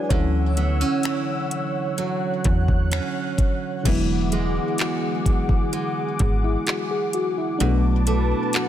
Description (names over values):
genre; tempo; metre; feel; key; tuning
contemporary R&B; 64 BPM; 4/4; straight; unclear; A4 = 438 Hz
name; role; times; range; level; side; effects
mellow FM electric piano; accompaniment; 0.0-8.7 s; D3 to D5; -26 LUFS; left 2 dB; chorus
warm analog pad; sustained chords; 0.0-8.7 s; G#4 to F#6; -29 LUFS; left 2 dB; chorus
picked steel-string acoustic guitar; arpeggios; 0.0-8.7 s; B2 to F#4; -27 LUFS; right 6 dB; ping-pong delay
slap-like FM bass; bass; 0.1-8.3 s; E1 to E2; -22 LUFS; equal; none
smooth R&B drum kit; drums; 0.1-8.7 s; crash cymbal, finger snaps, handclaps, hi-hat, kick drum; -24 LUFS; equal; none
room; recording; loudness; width
little or no reverb; none; -20 LUFS; side -11 dB against mid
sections
0.0-3.9 A section; 3.9-8.7 B section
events
FM electric piano solo 0.0-3.9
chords
0.1 Dmaj9; 3.9 E9; 7.6 Bm7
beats
| 0.10 1.04 1.98 2.92 | 3.85 4.79 5.73 6.67 | 7.60 8.54